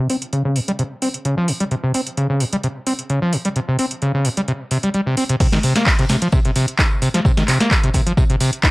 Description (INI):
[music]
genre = acid house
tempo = 130 BPM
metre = 4/4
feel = swing 53% on 16ths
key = C phrygian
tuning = A4 = 440 Hz
[part]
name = overdriven acid bass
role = riff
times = 0.0-8.7 s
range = Bb2 to Eb4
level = -18 LUFS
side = equal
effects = distortion, wide subtle chorus, vintage 12-bit sampler grit, analog delay
[part]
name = booming analog drum machine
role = drums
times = 0.1-8.7 s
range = crash cymbal, handclaps, hi-hat, snare drum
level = -21 LUFS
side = equal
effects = overdrive
[part]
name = electronic kick drum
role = drums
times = 5.4-8.7 s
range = none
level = -16 LUFS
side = equal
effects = overdrive
[part]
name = soft brush drum kit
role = drums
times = 5.4-8.7 s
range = hi-hat, snare drum, tambourine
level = -32 LUFS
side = equal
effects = sidechain pumping on hats, high-pass filter on hats, high-pass filter on snare, sidechain pumping on perc, high-pass filter on perc, high-pass filter on room
[sound]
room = studio ambience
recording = dry, gritty hardware recording, cassette tape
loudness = -16 LUFS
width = side -22 dB against mid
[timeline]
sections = 0.0-5.4 A section; 5.4-8.7 B section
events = filter sweep on acid bass 0.0-5.4; drop 5.4-8.7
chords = none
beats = 0.33 0.79 1.25 | 1.71 2.17 2.63 3.10 | 3.56 4.02 4.48 4.94 | 5.40 5.87 6.33 6.79 | 7.25 7.71 8.17 8.63